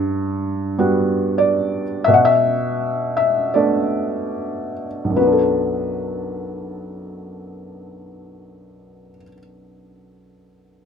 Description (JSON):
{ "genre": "classical, lyrical solo piano", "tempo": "36-53 BPM", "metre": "4/4", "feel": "rubato", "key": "B minor", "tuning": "A4 = 439 Hz", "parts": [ { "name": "felt-muted upright piano", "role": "solo", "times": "0.0-10.9 s", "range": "B1 to F#5", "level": "-17 LUFS", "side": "equal", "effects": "none" } ], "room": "light reverb", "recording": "none", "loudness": "-17 LUFS", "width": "side -7 dB against mid", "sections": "0.0-5.2 A section; 5.2-10.9 B section", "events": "slowing down 0.0-5.2", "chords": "0.0 Gmaj7; 2.1 Bm7" }